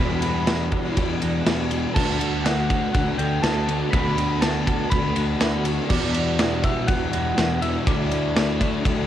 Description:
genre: rock, shoegaze and dream pop.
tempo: 122 BPM.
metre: 4/4.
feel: straight.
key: D major.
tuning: A4 = 442 Hz.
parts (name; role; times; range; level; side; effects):
soft struck synth lead; melody; 0.0-9.1 s; D5 to B5; -29 LUFS; equal; chorus, cassette tape, analog delay.
ethereal airy pad; sustained chords; 0.0-9.1 s; F#3 to D5; -35 LUFS; right 3 dB; none.
electric guitar through a small old amp; riff; 0.0-9.1 s; D3 to B4; -30 LUFS; right 9 dB; reverse reverb, cassette tape.
overdriven electric guitar; riff; 0.0-9.1 s; E2 to D4; -32 LUFS; equal; cassette tape.
thick fuzz guitar; riff; 0.0-9.1 s; E2 to D4; -27 LUFS; left 6 dB; distortion, analog chorus, cassette tape.
fuzz fingered electric bass; bass; 0.0-9.0 s; D2 to E2; -28 LUFS; equal; overdrive.
big rock drum kit; drums; 0.2-9.0 s; crash cymbal, kick drum, ride cymbal, snare drum; -24 LUFS; equal; cassette tape.
room: light reverb.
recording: home recording on cassette.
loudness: -20 LUFS.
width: side -11 dB against mid.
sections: 0.0-9.1 A section.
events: none.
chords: 0.0 Em9; 2.0 D6; 5.9 Em9; 7.9 Dadd9.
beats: 0.47 0.97 1.46 | 1.95 2.45 2.94 3.43 | 3.93 4.42 4.91 5.41 | 5.90 6.39 6.88 7.38 | 7.87 8.36 8.85.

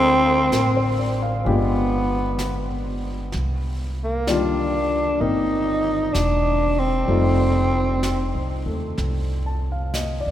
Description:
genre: jazz ballad.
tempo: 64 BPM.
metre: 4/4.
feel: swing 68% on 8ths.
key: unclear.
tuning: A4 = 441 Hz.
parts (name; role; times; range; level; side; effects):
growling tenor saxophone; melody; 0.0-8.7 s; Bb3 to Eb4; -22 LUFS; equal; none.
warm baby grand piano; accompaniment; 0.0-10.3 s; Eb3 to A5; -26 LUFS; left 2 dB; none.
upright bass; bass; 0.0-10.3 s; E1 to Eb2; -24 LUFS; equal; none.
jazz brush drum kit; drums; 0.5-10.3 s; brushed snare drum, hi-hat, snare drum; -35 LUFS; right 1 dB; none.
room: wet cathedral reverb, RT60 6.7 s.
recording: recorded in a church or concert hall.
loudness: -19 LUFS.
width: side -11 dB against mid.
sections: 0.0-10.3 A section.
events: none.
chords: 0.0 Dm7b5; 1.5 G7b9; 3.3 Cm11; 7.1 F7.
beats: 0.53 1.47 2.40 | 3.34 4.28 5.22 6.15 | 7.09 8.03 8.98 9.93.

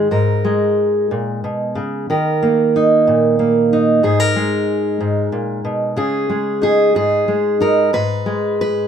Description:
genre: folk, solo fingerstyle acoustic guitar.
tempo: 61 BPM (dotted quarters).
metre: 6/8.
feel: straight.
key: G# minor.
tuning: A4 = 437 Hz.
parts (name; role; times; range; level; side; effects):
fingerpicked steel-string acoustic guitar; solo; 0.0-8.9 s; G#2 to B4; -14 LUFS; right 1 dB; none.
room: light reverb.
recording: none.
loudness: -14 LUFS.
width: side -8 dB against mid.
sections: 0.1-7.9 A section.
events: none.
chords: 0.1 G#madd9; 2.1 D#5; 4.0 G#madd9; 6.0 C#sus2; 7.9 G#m.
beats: | 0.12 1.11 | 2.10 3.08 | 4.05 5.01 | 5.98 6.96 | 7.94.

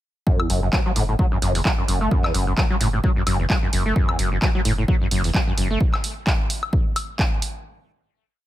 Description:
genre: acid house.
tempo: 130 BPM.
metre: 4/4.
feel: swing 56% on 16ths.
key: F# minor.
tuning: A4 = 439 Hz.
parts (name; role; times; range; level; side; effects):
overdriven acid bass; riff; 0.3-5.8 s; E2 to A3; -23 LUFS; equal; lush chorus, sidechain pumping, ping-pong delay.
electronic kick drum; drums; 0.3-7.3 s; none; -21 LUFS; equal; none.
punchy analog drum machine; drums; 0.4-7.5 s; handclaps, hi-hat, woodblock; -26 LUFS; equal; none.
warm sub bass; bass; 0.5-5.8 s; F#1; -24 LUFS; equal; sidechain pumping.
room: little or no reverb.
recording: none.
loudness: -18 LUFS.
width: side -14 dB against mid.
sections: 0.3-7.7 groove.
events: filter sweep on acid bass 0.3-5.8.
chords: none.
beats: | 0.27 0.73 1.19 1.65 | 2.11 2.58 3.04 3.50 | 3.96 4.42 4.88 5.34 | 5.81 6.27 6.73 7.19.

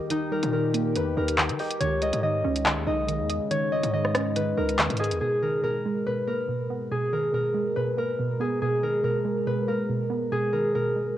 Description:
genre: hip hop, drill.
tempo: 141 BPM.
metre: 4/4.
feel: half-time.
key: G# harmonic minor.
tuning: A4 = 440 Hz.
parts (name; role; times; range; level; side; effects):
concert harp; melody; 0.0-11.2 s; D#4 to E5; -26 LUFS; left 1 dB; cassette tape, analog delay.
soft round pluck; accompaniment; 0.0-11.2 s; B2 to D#5; -31 LUFS; right 5 dB; chorus, cassette tape.
deep dark ambient pad; sustained chords; 0.0-11.2 s; B2 to A#4; -33 LUFS; equal; chorus, built-in reverb, cassette tape.
drill drum kit; drums; 0.1-5.2 s; handclaps, hi-hat, rim click; -26 LUFS; left 1 dB; cassette tape.
hard-hitting 808-style bass; bass; 0.4-5.2 s; B1 to D#3; -30 LUFS; left 1 dB; none.
room: moderate spring reverb, RT60 1.2 s.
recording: home recording on cassette.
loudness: -23 LUFS.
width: side -12 dB against mid.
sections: 0.0-5.2 A section; 5.2-11.2 B section.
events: none.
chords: 0.0 D#; 1.8 C#sus2; 5.2 G#madd9.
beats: | 0.10 0.53 0.96 1.38 | 1.81 2.23 2.66 3.08 | 3.51 3.94 4.36 4.79 | 5.21 5.64 6.06 6.49 | 6.91 7.34 7.76 8.19 | 8.62 9.04 9.47 9.89 | 10.32 10.74 11.17.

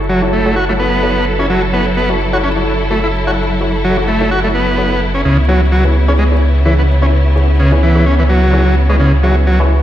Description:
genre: breakbeat.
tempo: 128 BPM.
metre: 4/4.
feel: swing 56% on 16ths.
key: F# minor.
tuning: A4 = 439 Hz.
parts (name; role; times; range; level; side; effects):
rich symphonic string section; sustained chords; 0.0-9.8 s; C#3 to A4; -19 LUFS; equal; vintage 12-bit sampler grit, low-pass filter.
saturated sub bass; bass; 0.0-9.8 s; F#1 to C#2; -14 LUFS; equal; none.
overdriven combo organ; riff; 0.1-9.6 s; C#3 to F#4; -16 LUFS; equal; low-pass filter, ping-pong delay.
orchestra-hit-like synth stab; stabs; 0.2-9.7 s; E4 to C#5; -20 LUFS; left 1 dB; built-in reverb, ping-pong delay.
room: light reverb.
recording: played on a big sound system in a bare room, stone room reverb, vinyl crackle.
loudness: -10 LUFS.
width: side -12 dB against mid.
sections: 0.0-9.8 A section.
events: none.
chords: 0.0 F#m7; 5.2 C#m7.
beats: 0.09 0.56 1.03 | 1.50 1.97 2.44 2.90 | 3.37 3.84 4.31 4.78 | 5.25 5.72 6.19 6.66 | 7.12 7.59 8.06 8.53 | 9.00 9.47.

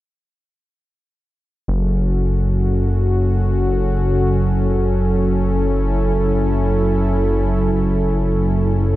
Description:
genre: techno.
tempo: free time.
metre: none.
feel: none.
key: F# minor.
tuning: A4 = 439 Hz.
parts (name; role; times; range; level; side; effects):
warm analog pad; sustained chords; 1.7-9.0 s; F#3 to A4; -20 LUFS; right 1 dB; chorus.
fat analog bass; bass; 1.7-9.0 s; F#1; -17 LUFS; equal; none.
room: light reverb.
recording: none.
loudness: -15 LUFS.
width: side -15 dB against mid.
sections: 1.7-9.0 A section.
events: none.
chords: 1.7 F#m.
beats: free time.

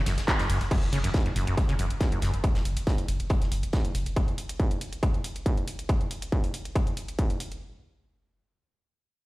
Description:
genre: driving peak-time techno.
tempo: 139 BPM.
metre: 4/4.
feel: straight.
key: unclear.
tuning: A4 = 441 Hz.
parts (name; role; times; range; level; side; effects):
warm sub bass; bass; 0.0-4.1 s; F#1; -31 LUFS; equal; tube saturation, sidechain pumping, low-pass filter.
acid bass, saw; riff; 0.1-2.3 s; F#2 to C#3; -30 LUFS; equal; wide subtle chorus, sidechain pumping, tape echo.
loose indie drum kit; drums; 0.1-4.2 s; hi-hat, snare drum; -43 LUFS; left 1 dB; sidechain pumping on hats, high-pass filter on hats, high-pass filter on snare, high-pass filter on room.
techno drum kit; drums; 0.1-7.6 s; crash cymbal, handclaps, hi-hat, ride cymbal; -36 LUFS; equal; overdrive.
electronic kick drum; drums; 0.3-7.3 s; none; -26 LUFS; equal; distortion, overdrive.
room: light reverb, studio reverb.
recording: played on a big sound system in a bare room, stone room reverb.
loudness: -25 LUFS.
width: side -20 dB against mid.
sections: 0.7-7.6 A section.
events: band accent 0.3.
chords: 0.0 F#5.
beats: 0.28 | 0.71 1.14 1.57 2.01 | 2.44 2.87 3.30 3.73 | 4.16 4.60 5.03 5.46 | 5.89 6.32 6.75 7.19.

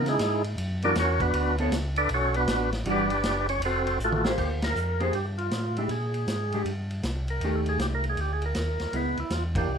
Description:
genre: soul jazz organ trio.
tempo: 158 BPM.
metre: 4/4.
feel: swing 65% on 8ths.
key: Bb major from 4.4 s.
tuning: A4 = 441 Hz.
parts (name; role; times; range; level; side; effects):
percussive tonewheel organ; melody; 0.0-9.8 s; G#3 to D5; -27 LUFS; right 1 dB; slow rotary speaker, plate reverb.
hollow-body jazz guitar; accompaniment; 0.0-9.7 s; Eb3 to C#5; -30 LUFS; right 1 dB; none.
mellow tonewheel organ; bass; 0.0-9.8 s; F1 to C#3; -29 LUFS; equal; chorus vibrato, slow rotary speaker.
vintage drum kit; drums; 0.1-9.6 s; crash cymbal, hi-hat, kick drum, ride cymbal, snare drum, toms; -34 LUFS; equal; none.
room: moderate studio reverb, RT60 0.5 s.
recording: none.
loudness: -24 LUFS.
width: side -7 dB against mid.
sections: 0.0-4.4 A section; 4.4-9.8 B section.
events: tonewheel organ solo 0.0-4.4; drum fill 4.0-4.4; band accent 4.6, 9.5.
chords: 0.0 C#madd9; 0.6 F#7b13; 1.3 Bm9; 2.9 Em9; 3.6 F; 4.4 Bb69; 5.9 Bb7sus2; 7.4 Ebmaj7#11; 8.9 Dbm7.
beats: 0.20 0.57 0.95 | 1.33 1.71 2.09 2.47 | 2.85 3.23 3.62 4.00 | 4.38 4.76 5.14 5.52 | 5.90 6.28 6.66 7.04 | 7.42 7.80 8.18 8.55 | 8.93 9.31 9.69.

